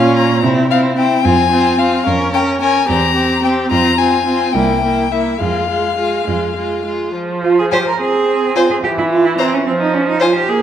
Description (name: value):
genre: quick classical-period movement for string quartet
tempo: 68-75 BPM (dotted quarters)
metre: 6/8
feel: rubato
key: F minor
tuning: A4 = 440 Hz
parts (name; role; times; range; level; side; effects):
- clear violin; melody; 0.0-10.3 s; E5 to Bb5; -17 LUFS; left 7 dB; none
- clear violin; second line; 0.0-10.3 s; E4 to C5; -21 LUFS; left 3 dB; none
- rich viola; accompaniment; 0.0-10.6 s; E3 to Db4; -17 LUFS; right 1 dB; none
- clear cello; bass; 0.0-10.6 s; C2 to Bb4; -17 LUFS; right 4 dB; none
room: wet recital hall reverb, RT60 1.7 s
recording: dark, warm production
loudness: -12 LUFS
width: side -9 dB against mid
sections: 0.0-7.2 A section; 7.2-10.6 B section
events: none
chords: 0.4 C; 1.2 Fm; 2.1 Bbm7/F; 2.9 C7/E; 3.7 Fm; 4.6 C7; 5.4 Fm; 8.8 C/E; 9.7 N.C.